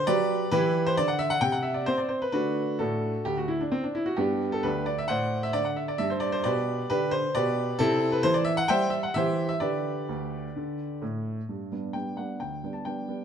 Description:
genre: classical-period piano sonatina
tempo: 132 BPM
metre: 4/4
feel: straight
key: G major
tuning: A4 = 439 Hz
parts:
  - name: warm baby grand piano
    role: solo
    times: 0.0-13.2 s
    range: D2 to A5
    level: -25 LUFS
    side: equal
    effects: none
room: moderate recital hall reverb, RT60 1.6 s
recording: close, detailed microphones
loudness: -25 LUFS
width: side -8 dB against mid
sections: 0.0-11.5 A section; 11.5-13.2 B section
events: none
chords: 0.0 G; 0.5 Em; 1.4 N.C.; 2.3 D; 4.2 G; 5.1 D5/A; 6.0 G; 7.8 C; 9.6 G/D; 10.6 D5; 11.5 G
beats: 0.07 | 0.52 0.97 1.42 1.87 | 2.33 2.80 3.27 3.73 | 4.19 4.65 5.10 5.55 | 6.00 6.45 6.90 7.34 | 7.79 8.23 8.69 9.14 | 9.61 10.08 10.55 11.02 | 11.49 11.94 12.40 12.85

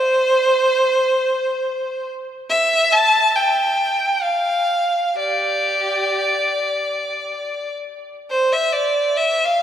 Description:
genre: classical, free, expressive piece for unaccompanied violin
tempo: free time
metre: none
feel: none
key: C major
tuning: A4 = 439 Hz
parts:
  - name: rich violin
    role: solo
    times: 0.0-9.6 s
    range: G4 to A5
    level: -16 LUFS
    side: equal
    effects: none
room: wet cathedral reverb, RT60 3.9 s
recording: none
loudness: -16 LUFS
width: side -10 dB against mid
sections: 0.0-8.3 A section; 8.3-9.6 B section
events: none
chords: none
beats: free time

